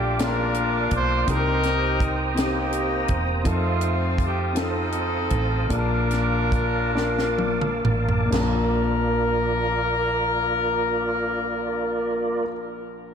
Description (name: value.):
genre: slow gospel.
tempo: 41-55 BPM (dotted quarters).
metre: 6/8.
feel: straight.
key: Bb major.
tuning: A4 = 440 Hz.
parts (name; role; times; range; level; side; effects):
warm horn section; melody; 0.0-12.5 s; A3 to C5; -25 LUFS; left 1 dB; diffuse ambient delay.
warm grand piano; accompaniment; 0.0-13.1 s; Bb1 to A5; -29 LUFS; left 3 dB; none.
tonewheel organ; sustained chords; 0.0-12.5 s; Bb3 to Eb6; -28 LUFS; right 1 dB; slow rotary speaker, chorus vibrato.
hollow-body short-scale fingered electric bass; bass; 0.0-12.4 s; E1 to F2; -27 LUFS; right 1 dB; none.
tight funk drum kit; drums; 0.2-8.6 s; china cymbal, hi-hat, kick drum, snare drum, toms; -28 LUFS; equal; none.
room: wet plate reverb, RT60 3.0 s.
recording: dreamy mix soaked in reverb.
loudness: -20 LUFS.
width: side -7 dB against mid.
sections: 0.0-8.3 A section; 8.3-13.1 B section.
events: slowing down 3.4-8.3; drum fill 6.9-8.3.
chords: 0.0 Bbmaj7; 1.3 Cm7; 3.4 F7; 5.7 Bbmaj7.